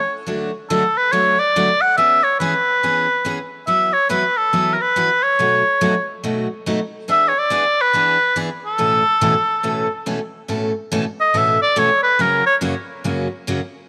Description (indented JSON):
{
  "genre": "country",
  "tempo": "141 BPM",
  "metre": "4/4",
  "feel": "swing 65% on 8ths",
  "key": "A major",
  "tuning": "A4 = 440 Hz",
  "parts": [
    { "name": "clear oboe", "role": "melody", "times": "0.0-12.6 s", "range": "A4 to F#5", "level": "-18 LUFS", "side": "equal", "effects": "none" },
    { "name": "picked steel-string acoustic guitar", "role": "accompaniment", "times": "0.3-13.6 s", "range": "F#2 to B4", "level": "-25 LUFS", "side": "equal", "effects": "none" }
  ],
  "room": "light reverb, studio ambience",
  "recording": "none",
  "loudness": "-18 LUFS",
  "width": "mono",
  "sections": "0.0-10.5 A section; 10.5-13.9 B section",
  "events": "oboe solo 10.5-13.9",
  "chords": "0.3 D; 2.0 E6; 3.7 Esus2; 5.4 B7; 7.1 E7; 8.8 Aadd9; 12.2 F#"
}